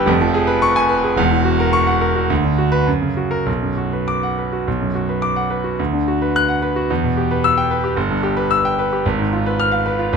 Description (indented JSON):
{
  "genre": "classical, virtuoso piano study",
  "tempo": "98-113 BPM",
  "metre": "2/4",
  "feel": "rubato",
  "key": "B minor",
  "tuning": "A4 = 440 Hz",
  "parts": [
    { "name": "clear concert grand piano", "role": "solo", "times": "0.0-10.2 s", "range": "E1 to F#6", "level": "-15 LUFS", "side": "equal", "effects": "none" }
  ],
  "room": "moderate recital hall reverb, RT60 1.3 s",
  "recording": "close, detailed microphones",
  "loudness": "-15 LUFS",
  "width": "side -5 dB against mid",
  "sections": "0.0-4.7 A section; 4.7-10.2 A section",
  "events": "none",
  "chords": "0.1 C#7/E#; 1.2 F#7/E; 2.3 Bm/D; 2.9 F#; 3.5 Bm; 5.8 Bm/D; 6.9 Em; 8.0 Em/G; 9.0 Fdim/Ab",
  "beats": "| 0.09 0.63 | 1.18 1.74 | 2.30 2.87 | 3.47 4.08 | 4.67 5.23 | 5.79 6.35 | 6.90 7.43 | 7.96 8.50 | 9.04 9.58 | 10.12"
}